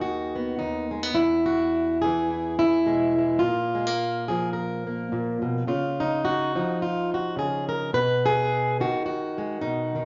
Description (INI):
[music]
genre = folk, solo fingerstyle acoustic guitar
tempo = 106 BPM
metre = 4/4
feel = swing 56% on 8ths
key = unclear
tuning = A4 = 442 Hz
[part]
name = fingerpicked plugged-in steel-string acoustic guitar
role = solo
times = 0.0-10.1 s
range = D#2 to Cb5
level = -25 LUFS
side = equal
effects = none
[sound]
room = wet large studio reverb, RT60 0.7 s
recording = nothing above 7.5 kHz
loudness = -25 LUFS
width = mono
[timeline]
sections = 0.0-10.1 A section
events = none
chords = 0.0 B/D#; 1.2 E; 3.4 Bb5; 5.7 Dbadd9; 7.9 Abm/Cb